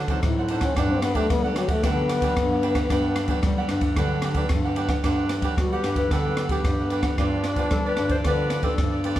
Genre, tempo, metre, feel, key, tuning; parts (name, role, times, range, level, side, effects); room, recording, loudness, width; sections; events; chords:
samba and choro; 112 BPM; 4/4; straight; G major; A4 = 438 Hz
cavaquinho; accompaniment; 0.0-9.2 s; D4 to F#5; -30 LUFS; right 6 dB
nylon-string guitar; accompaniment; 0.0-9.2 s; G2 to Eb4; -31 LUFS; left 4 dB
breathy bass clarinet; bass; 0.0-9.2 s; G2 to G3; -27 LUFS; equal
open jazz drum kit; drums; 0.1-9.2 s; kick drum, ride cymbal, rim click; -25 LUFS; equal
breathy trombone; second line; 0.6-9.0 s; D3 to D4; -28 LUFS; left 2 dB
mellow clarinet; melody; 5.6-9.0 s; F#4 to C5; -28 LUFS; left 2 dB
moderate recital hall reverb, RT60 1.4 s; heard from further back in the room; -21 LUFS; side -13 dB against mid
0.0-5.0 A section; 5.0-9.2 B section
trombone solo 0.0-5.0
0.0 D7b9; 0.8 Gmaj7; 7.2 G7